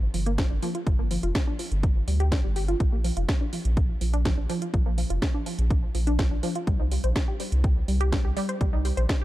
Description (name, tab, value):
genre	progressive house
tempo	124 BPM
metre	4/4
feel	straight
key	unclear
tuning	A4 = 441 Hz
part	round analog bass	bass	0.0-9.1 s	F1 to D2	-25 LUFS	equal	sidechain pumping
part	wide unison pluck	arpeggios	0.1-9.2 s	F3 to C5	-31 LUFS	equal	phaser, sidechain pumping, digital delay
part	house drum kit	drums	0.1-9.2 s	hi-hat, snare drum	-34 LUFS	equal	sidechain pumping on hats
part	electronic kick drum	drums	0.4-9.2 s	none	-25 LUFS	equal	none
room	digital ambience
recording	dark, warm production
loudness	-23 LUFS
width	side -16 dB against mid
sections	0.0-9.2 A section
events	filter sweep on synth pluck 0.0-9.2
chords	0.0 G7(no3); 2.8 Bb5; 6.7 C5